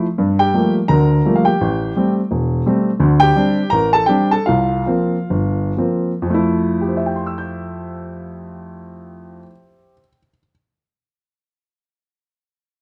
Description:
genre	solo jazz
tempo	115-173 BPM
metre	4/4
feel	swing 63% on 8ths, rubato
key	F major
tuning	A4 = 441 Hz
part	warm baby grand piano	solo	0.0-10.5 s	E1 to G6	-18 LUFS	equal	none
room	moderate large studio reverb, RT60 1.0 s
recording	dark, warm production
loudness	-17 LUFS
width	mono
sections	0.2-6.3 A section; 6.3-10.3 B section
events	slowing down 3.0-6.3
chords	0.2 Gm9; 1.6 Am7; 3.0 D7sus4; 4.5 C7sus4; 6.3 Fmaj7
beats	| 0.16 0.52 0.88 1.24 | 1.60 1.95 2.30 2.65 | 3.00 3.35 3.71 4.08 | 4.46 4.87 5.30 5.77 | 6.27 6.79 7.30 7.80 | 8.30 8.80 9.31 9.82

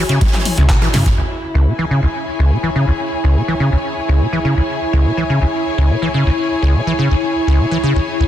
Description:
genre	acid house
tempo	124 BPM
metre	4/4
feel	straight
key	C# minor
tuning	A4 = 440 Hz
part	warbly tape-like pad	sustained chords	0.0-8.3 s	E4 to F#4	-23 LUFS	equal	chorus, built-in reverb, phaser, sidechain pumping
part	acid bass, saw	riff	0.0-8.2 s	C#2 to E3	-15 LUFS	equal	tube saturation, analog chorus, vintage 12-bit sampler grit, tape echo
part	warm chamber string section	texture	0.0-8.3 s	E4 to G#5	-22 LUFS	left 3 dB	sidechain pumping
part	big rock drum kit	drums	0.1-1.2 s	hi-hat, snare drum	-27 LUFS	right 2 dB	high-pass filter on hats, high-pass filter on snare, high-pass filter on room
part	punchy analog drum machine	drums	0.1-1.2 s	handclaps, hi-hat, rim click, snare drum, toms	-20 LUFS	equal	none
part	electronic kick drum	drums	0.2-1.2 s	none	-16 LUFS	equal	overdrive
room	light reverb, small room ambience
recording	dense, heavily limited modern master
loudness	-13 LUFS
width	side -11 dB against mid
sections	0.0-1.2 A section; 1.2-8.3 B section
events	filter sweep on acid bass 0.0-1.2; drum fill 0.2-1.2; band accent 0.7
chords	0.0 C#m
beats	0.21 0.70 | 1.18 1.66 2.15 2.63 | 3.12 3.60 4.08 4.57 | 5.05 5.54 6.02 6.50 | 6.99 7.47 7.95

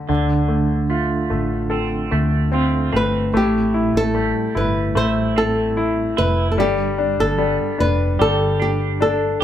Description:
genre	pop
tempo	74 BPM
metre	4/4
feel	straight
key	A minor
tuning	A4 = 440 Hz
part	clear baby grand piano	accompaniment	0.0-9.4 s	D3 to A4	-21 LUFS	left 3 dB	none
part	vintage muted fingered electric bass	bass	0.0-9.4 s	F1 to D2	-22 LUFS	right 1 dB	none
part	clean electric guitar	arpeggios	0.1-9.4 s	G2 to G4	-25 LUFS	right 6 dB	harmonic tremolo
part	flamenco guitar	melody	3.0-9.4 s	G4 to C5	-21 LUFS	equal	none
room	moderate large studio reverb, RT60 0.9 s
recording	band playing live in one room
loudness	-16 LUFS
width	side -10 dB against mid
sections	0.1-3.3 A section; 3.3-9.4 B section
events	none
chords	0.1 Dm7; 3.3 Am7; 6.6 G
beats	| 0.10 0.91 1.72 2.53 | 3.34 4.15 4.96 5.77 | 6.58 7.39 8.20 9.01

